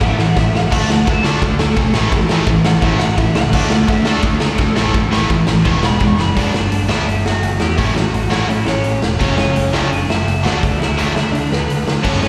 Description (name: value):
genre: punk rock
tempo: 170 BPM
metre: 4/4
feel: straight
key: unclear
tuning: A4 = 435 Hz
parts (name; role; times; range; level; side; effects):
- lead guitar through a small cranked amp; melody; 0.0-12.3 s; B3 to C#6; -25 LUFS; equal; overdrive, slapback echo
- tight distorted guitar; riff; 0.0-12.2 s; F#2 to E4; -24 LUFS; equal; distortion, slapback echo
- growling picked electric bass; bass; 0.0-12.3 s; E1 to D3; -21 LUFS; equal; overdrive
- raw garage drum kit; drums; 0.0-12.3 s; crash cymbal, hi-hat, kick drum, ride cymbal, snare drum; -20 LUFS; equal; none
- tight distorted guitar; riff; 0.7-12.2 s; F#2 to E4; -22 LUFS; equal; distortion, slapback echo
room: small room ambience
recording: live gig heard through the venue's PA, recital hall reverb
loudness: -15 LUFS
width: mono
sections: 0.0-6.4 A section; 6.4-12.3 B section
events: lead electric guitar solo 0.0-6.4; drum fill 0.0-0.7, 6.2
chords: 0.0 A5; 0.7 D5; 1.9 A5; 3.5 D5; 4.8 A5; 5.7 E; 6.4 G; 7.8 A; 9.2 F#m; 10.4 D